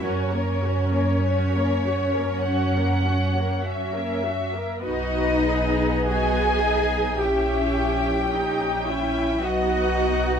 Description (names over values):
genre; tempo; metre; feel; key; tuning
classical, slow romantic movement for string orchestra; 47-54 BPM; 4/4; rubato; B major; A4 = 444 Hz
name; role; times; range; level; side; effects
muted studio violin section; melody; 0.0-10.4 s; A#4 to G5; -30 LUFS; left 4 dB; none
muted symphonic violin section; second line; 0.0-10.4 s; C#5 to G#5; -28 LUFS; left 3 dB; none
muted symphonic viola section; accompaniment; 0.0-10.4 s; A#3 to A#4; -28 LUFS; right 1 dB; none
muted symphonic cello section; bass; 0.0-10.4 s; C#4 to G#4; -26 LUFS; right 1 dB; none
muted symphonic double bass section; bass; 0.1-10.4 s; A#1 to F#2; -26 LUFS; right 1 dB; none
room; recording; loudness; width
light reverb; minimal, uncompressed stereo recording; -20 LUFS; side -7 dB against mid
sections
0.0-10.4 A section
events
none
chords
0.0 F#; 4.8 B; 7.2 A#dim7; 9.4 B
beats
| 0.03 1.25 2.46 3.65 | 4.84 6.07 7.20 8.31 | 9.43